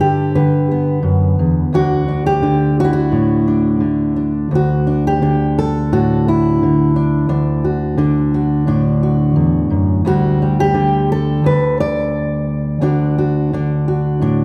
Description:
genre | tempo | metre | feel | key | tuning
folk, solo fingerstyle acoustic guitar | 87 BPM | 4/4 | straight | D major | A4 = 441 Hz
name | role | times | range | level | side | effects
fingerpicked steel-string acoustic guitar | solo | 0.0-14.4 s | D2 to D5 | -15 LUFS | equal | none
room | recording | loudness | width
wet recital hall reverb, RT60 1.7 s | recorded in a church or concert hall | -16 LUFS | mono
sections
0.0-4.5 A section; 4.5-14.4 A section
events
none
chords
0.0 Gadd9; 1.7 D; 10.1 Gsus2; 12.8 D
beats
0.35 1.05 | 1.74 2.43 3.13 3.83 | 4.53 5.23 5.93 6.62 | 7.31 8.00 8.69 9.38 | 10.06 10.75 11.45 12.14 | 12.83 13.52 14.22

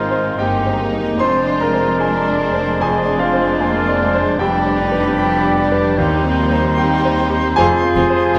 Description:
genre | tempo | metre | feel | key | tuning
classical, romantic movement for piano and orchestra | 75 BPM | 4/4 | rubato | unclear | A4 = 441 Hz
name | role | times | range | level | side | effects
clear grand piano | melody | 0.0-8.4 s | Eb2 to C6 | -21 LUFS | equal | none
rich chamber violin section | melody | 0.0-8.4 s | C4 to F4 | -33 LUFS | equal | none
bright clarinet | second line | 0.0-8.4 s | D4 to F4 | -28 LUFS | equal | none
rich chamber violin section | second line | 0.0-8.4 s | B3 to Eb4 | -30 LUFS | equal | none
silver concert flute | second line | 0.0-8.4 s | B5 to C6 | -29 LUFS | equal | none
warm oboe | second line | 0.0-8.4 s | C5 to D5 | -28 LUFS | equal | none
warm bassoon | accompaniment | 0.0-8.4 s | F3 to Ab3 | -30 LUFS | equal | none
warm symphonic viola section | accompaniment | 0.0-8.4 s | F3 to Bb3 | -29 LUFS | equal | none
bright trombone section | sustained chords | 0.0-8.4 s | C3 to Ab3 | -30 LUFS | equal | none
mellow French horn section | sustained chords | 0.0-8.4 s | B3 to F4 | -28 LUFS | equal | none
warm trumpet section | stabs | 0.0-8.4 s | F4 to C5 | -26 LUFS | equal | none
dark chamber double bass section | bass | 0.0-8.4 s | F1 to Eb2 | -28 LUFS | equal | none
rich symphonic cello section | bass | 0.0-8.4 s | Eb2 to Ab2 | -29 LUFS | equal | none
room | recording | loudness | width
moderate scoring stage reverb, RT60 1.8 s | none | -16 LUFS | mono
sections
0.0-8.4 A section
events
none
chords
0.0 Abmaj7; 1.2 Dm7b5/F; 4.4 G7/F; 6.0 Cm/Eb; 7.6 Fm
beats
0.39 | 1.20 2.01 2.81 3.61 | 4.41 5.20 5.99 6.78 | 7.57 8.36

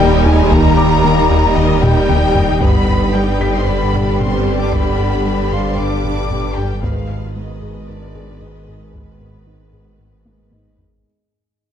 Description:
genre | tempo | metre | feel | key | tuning
cinematic, hybrid orchestral and electronic film score | 114 BPM | 4/4 | straight | unclear | A4 = 441 Hz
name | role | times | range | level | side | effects
dark symphonic violin section | melody | 0.0-10.5 s | Cb5 to D6 | -21 LUFS | left 3 dB | none
clear chamber violin section | second line | 0.0-10.8 s | G4 to B4 | -25 LUFS | left 3 dB | none
rich symphonic viola section | accompaniment | 0.0-10.8 s | Eb3 to Eb4 | -22 LUFS | left 1 dB | none
warm French horn section | sustained chords | 0.0-10.5 s | Cb3 to D4 | -23 LUFS | left 4 dB | none
warm trombone section | sustained chords | 0.0-10.8 s | Cb3 to Ab3 | -24 LUFS | right 3 dB | none
harp-like synth pluck | arpeggios | 0.0-10.9 s | Eb3 to Ab4 | -24 LUFS | right 1 dB | none
rubbery square bass | riff | 0.0-10.9 s | Eb2 to Ab3 | -21 LUFS | left 2 dB | none
punchy sub bass | bass | 0.0-11.0 s | Eb1 to Ab1 | -24 LUFS | equal | none
rich symphonic cello section | bass | 0.0-10.8 s | Eb2 to Ab2 | -23 LUFS | right 2 dB | none
warm symphonic double bass section | bass | 0.0-10.8 s | G1 to Eb2 | -22 LUFS | right 4 dB | none
felt-muted upright piano | texture | 0.0-11.1 s | Eb4 to B6 | -32 LUFS | right 1 dB | none
taiko ensemble | drums | 0.5-11.0 s | none | -20 LUFS | equal | none
room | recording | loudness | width
moderate scoring stage reverb, RT60 1.8 s | dark, warm production | -12 LUFS | side -9 dB against mid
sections
0.0-11.0 A section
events
fade-out 0.1-11.0; drum fill 1.8-2.6, 10.3-11.0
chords
0.0 Eb; 2.6 G; 6.8 Abm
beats
| 0.52 1.04 1.57 2.10 | 2.62 3.15 3.67 4.20 | 4.73 5.25 5.78 6.30 | 6.83 7.36 7.88 8.41 | 8.94 9.46 9.99 10.52

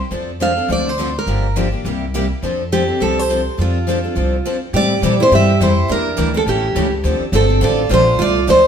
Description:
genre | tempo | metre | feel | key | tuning
acoustic string swing (jazz manouche) | 208 BPM | 4/4 | swing 57% on 8ths | F major | A4 = 440 Hz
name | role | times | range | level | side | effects
picked steel-string acoustic guitar | accompaniment | 0.1-8.6 s | C3 to A4 | -21 LUFS | left 4 dB | none
picked steel-string acoustic guitar | accompaniment | 0.1-8.6 s | C3 to Bb4 | -26 LUFS | right 4 dB | none
upright bass | bass | 0.1-8.7 s | G1 to Bb2 | -19 LUFS | equal | none
picked steel-string acoustic guitar | melody | 0.4-8.7 s | F4 to F5 | -17 LUFS | right 1 dB | none
picked steel-string acoustic guitar | second line | 4.7-8.7 s | C4 to G4 | -22 LUFS | right 4 dB | none
room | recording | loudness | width
wet stone room reverb, RT60 1.0 s | band playing live in one room | -14 LUFS | side -8 dB against mid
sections
0.0-4.7 A section; 4.7-8.7 B section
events
break 4.5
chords
0.1 F6; 0.7 Dm7; 1.3 Gm7; 1.9 C7; 2.4 F6; 4.7 Am7; 5.9 Em7b5; 6.5 A7; 7.0 Dm7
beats
| 0.12 0.41 0.70 0.98 | 1.27 1.56 1.85 2.14 | 2.43 2.72 3.01 3.30 | 3.58 3.87 4.16 4.45 | 4.74 5.03 5.32 5.61 | 5.89 6.18 6.47 6.76 | 7.05 7.33 7.62 7.91 | 8.20 8.49

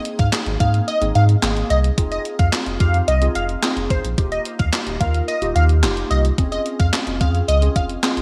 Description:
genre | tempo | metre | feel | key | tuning
dance-pop | 109 BPM | 4/4 | straight | Ab major | A4 = 441 Hz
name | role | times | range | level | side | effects
glassy digital keys | accompaniment | 0.0-8.2 s | Bb3 to Bb4 | -28 LUFS | equal | chorus, sidechain pumping
gated 80s digital drum machine | drums | 0.1-8.2 s | handclaps, hi-hat, kick drum, snare drum | -24 LUFS | equal | gated reverb, gated reverb snare
plucky unison lead | melody | 0.2-7.8 s | C5 to F5 | -26 LUFS | equal | sidechain pumping, tape echo
warm sub bass | bass | 0.2-8.2 s | Eb1 to Ab2 | -21 LUFS | equal | sidechain pumping
room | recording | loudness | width
light reverb | none | -19 LUFS | mono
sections
0.0-8.2 A section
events
none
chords
0.0 Abadd9; 2.0 Fm7; 4.2 Ebadd9; 6.4 Dbmaj7/F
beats
0.33 0.88 1.43 | 1.98 2.53 3.08 3.63 | 4.18 4.73 5.28 5.83 | 6.38 6.93 7.48 8.03

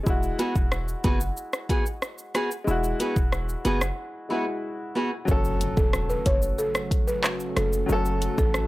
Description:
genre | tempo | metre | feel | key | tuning
dancehall | 92 BPM | 4/4 | straight | F# minor | A4 = 436 Hz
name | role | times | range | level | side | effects
clear baby grand piano | accompaniment | 0.0-8.7 s | F#3 to A4 | -31 LUFS | left 2 dB | none
hard-hitting 808-style bass | bass | 0.1-8.7 s | E1 to A1 | -27 LUFS | equal | none
afro-pop drum kit | drums | 0.1-8.7 s | handclaps, hi-hat, kick drum, rim click, shaker | -25 LUFS | equal | none
nylon-string guitar | arpeggios | 0.4-5.1 s | B3 to G#4 | -26 LUFS | right 1 dB | none
lush unison pad | sustained chords | 5.3-8.7 s | C#3 to F#4 | -34 LUFS | right 1 dB | chorus, sidechain pumping
impact | sound effects | 5.5-7.9 s | none | -38 LUFS | equal | none
buzzing marimba with medium mallets | melody | 5.8-8.5 s | A4 to C#5 | -28 LUFS | equal | tape echo
room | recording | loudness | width
little or no reverb | dry, gritty hardware recording | -23 LUFS | side -18 dB against mid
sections
0.0-5.3 A section; 5.3-8.7 B section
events
break 4.0-5.3; impact 5.3-7.9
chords
0.1 Eadd9; 5.3 F#m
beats
| 0.07 0.72 1.37 2.02 | 2.67 3.33 3.98 4.63 | 5.28 5.93 6.59 7.24 | 7.89 8.54

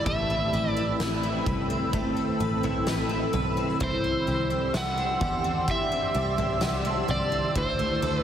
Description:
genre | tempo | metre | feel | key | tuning
dream pop | 64 BPM | 4/4 | straight | C lydian | A4 = 442 Hz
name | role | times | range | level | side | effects
overdriven slide guitar | melody | 0.0-8.2 s | C5 to F#5 | -30 LUFS | right 1 dB | digital delay
ethereal airy pad | sustained chords | 0.0-8.2 s | C4 to E6 | -30 LUFS | right 1 dB | ensemble chorus, built-in reverb
picked twelve-string acoustic guitar | arpeggios | 0.0-8.2 s | E3 to B4 | -31 LUFS | left 3 dB | analog chorus, digital delay
picked electric bass | bass | 0.1-8.2 s | A1 to E2 | -31 LUFS | equal | none
oversized low-tuned drum kit | drums | 0.1-7.8 s | kick drum, snare drum, toms | -31 LUFS | right 1 dB | none
soft synth bell | texture | 4.7-8.2 s | E5 to C6 | -43 LUFS | equal | none
room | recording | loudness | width
moderate huge ambient reverb, RT60 7.3 s | heavily compressed radio sound, multiband compression | -24 LUFS | side -9 dB against mid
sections
0.0-8.2 A section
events
none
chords
0.1 Amadd9; 3.8 Cadd9; 7.6 Dsus2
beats
| 0.06 0.99 1.93 2.87 | 3.81 4.74 5.68 6.62 | 7.56

